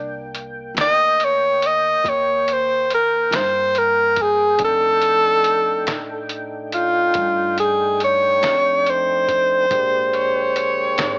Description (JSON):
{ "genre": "slow blues", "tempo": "47 BPM (dotted quarters)", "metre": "12/8", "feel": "straight", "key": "unclear", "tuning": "A4 = 440 Hz", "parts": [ { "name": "warm tenor saxophone", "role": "melody", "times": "0.0-11.2 s", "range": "D4 to Eb5", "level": "-16 LUFS", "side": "equal", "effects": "none" }, { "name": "mellow tonewheel organ", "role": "sustained chords", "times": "0.0-11.2 s", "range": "Ab3 to G5", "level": "-30 LUFS", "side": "equal", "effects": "overdrive, chorus vibrato, slow rotary speaker" }, { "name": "upright bass", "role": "bass", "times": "0.0-11.2 s", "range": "Ab1 to A2", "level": "-36 LUFS", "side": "equal", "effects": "none" }, { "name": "lo-fi sampler-style drum kit", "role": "drums", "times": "0.3-11.2 s", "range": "hi-hat, kick drum, snare drum", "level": "-24 LUFS", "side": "equal", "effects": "cassette tape" }, { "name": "overdriven harmonica", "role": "second line", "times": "10.1-11.2 s", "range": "Db5", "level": "-21 LUFS", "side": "equal", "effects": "analog delay" } ], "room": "light reverb, studio ambience", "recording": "home recording on cassette, small speaker sound", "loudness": "-15 LUFS", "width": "side -36 dB against mid", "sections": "0.0-11.2 A section", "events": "none", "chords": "0.0 Cm7; 4.6 F13; 9.7 Bb13", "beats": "0.75 2.04 3.31 | 4.60 5.88 7.16 8.43 | 9.71 10.99" }